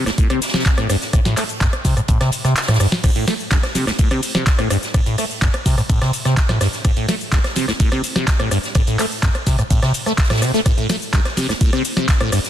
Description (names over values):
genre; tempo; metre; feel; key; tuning
acid house; 126 BPM; 4/4; straight; A minor; A4 = 441 Hz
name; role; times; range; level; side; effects
liquid acid bass; riff; 0.0-12.4 s; G2 to A3; -20 LUFS; equal; phaser, overdrive, wide subtle chorus, sidechain pumping
booming analog drum machine; drums; 0.1-12.5 s; crash cymbal, handclaps, hi-hat, ride cymbal, rim click, shaker, snare drum; -22 LUFS; equal; none
soft-mallet drum kit; drums; 0.1-12.5 s; hi-hat, snare drum; -30 LUFS; right 2 dB; high-pass filter on hats, high-pass filter on snare, high-pass filter on room
electronic kick drum; drums; 0.2-12.2 s; none; -16 LUFS; equal; none
room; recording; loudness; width
light reverb, digital ambience; dense, heavily limited modern master; -15 LUFS; side -11 dB against mid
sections
0.0-12.5 A section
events
kick drops out 2.6-3.0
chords
none